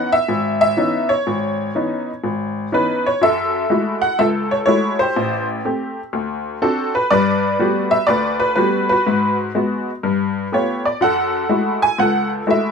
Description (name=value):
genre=solo jazz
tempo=123 BPM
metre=4/4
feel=swing 67% on 8ths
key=C# minor, F# minor from 3.2 s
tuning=A4 = 441 Hz
part: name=honky-tonk upright piano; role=solo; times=0.0-12.7 s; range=G#1 to G#5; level=-16 LUFS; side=equal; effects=none
room=moderate club reverb, RT60 0.6 s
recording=minimal, uncompressed stereo recording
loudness=-16 LUFS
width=side -6 dB against mid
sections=0.0-3.2 A section; 3.2-12.7 B section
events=none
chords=0.0 C#m9; 3.2 F#m9; 5.2 Am7; 6.1 D7; 7.1 Gmaj9; 9.1 G#m7; 10.0 G9; 11.0 F#m9